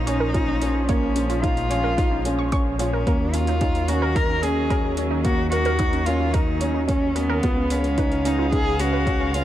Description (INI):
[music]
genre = piano and strings electronica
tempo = 110 BPM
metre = 4/4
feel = straight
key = Eb minor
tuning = A4 = 442 Hz
[part]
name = dark cello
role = melody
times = 0.0-9.4 s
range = Cb4 to Bb4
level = -25 LUFS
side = left 1 dB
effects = none
[part]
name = dark string quartet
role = sustained chords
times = 0.0-9.4 s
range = Db3 to F5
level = -31 LUFS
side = left 1 dB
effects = sidechain pumping
[part]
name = dark detuned saw bass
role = bass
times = 0.0-9.4 s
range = Bb1 to Eb2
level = -26 LUFS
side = equal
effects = sidechain pumping
[part]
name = wide unison pluck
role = arpeggios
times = 0.1-9.3 s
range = Db4 to Db6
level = -30 LUFS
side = right 3 dB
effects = sidechain pumping, tape echo
[part]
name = felt-muted upright piano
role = riff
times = 0.1-9.4 s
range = Bb3 to Eb4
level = -26 LUFS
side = right 1 dB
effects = tape echo
[part]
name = electronic hi-hat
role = drums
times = 0.1-9.4 s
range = none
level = -36 LUFS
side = right 2 dB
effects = overdrive
[part]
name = electronic kick drum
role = drums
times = 0.3-9.2 s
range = none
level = -24 LUFS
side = equal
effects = overdrive
[sound]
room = little or no reverb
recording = none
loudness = -19 LUFS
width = side -12 dB against mid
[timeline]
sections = 0.0-9.4 A section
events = none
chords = 0.0 Bbm; 3.1 Ebm7; 7.4 Db7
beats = 0.34 | 0.89 1.43 1.98 2.52 | 3.07 3.61 4.16 4.70 | 5.25 5.79 6.34 6.89 | 7.43 7.98 8.52 9.07